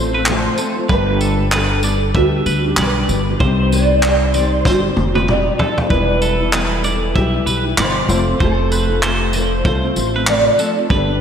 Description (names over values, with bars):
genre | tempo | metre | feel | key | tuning
acoustic pop | 96 BPM | 4/4 | swing 60% on 16ths | unclear | A4 = 440 Hz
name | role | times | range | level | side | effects
fingerpicked steel-string acoustic guitar | melody | 0.0-11.2 s | G4 to Eb5 | -20 LUFS | right 1 dB | ensemble chorus, tape echo
felt-muted upright piano | accompaniment | 0.0-11.2 s | F3 to C5 | -25 LUFS | left 3 dB | none
nylon-string guitar | accompaniment | 0.0-11.2 s | E2 to G4 | -22 LUFS | left 1 dB | double-tracked left and right
upright bass | bass | 0.0-11.2 s | E1 to D2 | -19 LUFS | equal | none
twelve-string electric guitar | arpeggios | 0.1-11.2 s | A4 to E5 | -23 LUFS | right 3 dB | tape echo
loose indie drum kit | drums | 0.3-11.1 s | handclaps, kick drum, snare drum, tambourine, toms | -20 LUFS | equal | none
room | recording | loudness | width
moderate lush hall reverb, RT60 2.3 s | dreamy mix soaked in reverb | -13 LUFS | side -8 dB against mid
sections
0.0-11.2 A section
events
drum fill 4.7-5.9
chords
0.0 F; 0.9 G; 3.4 Cm; 5.9 Em; 8.1 F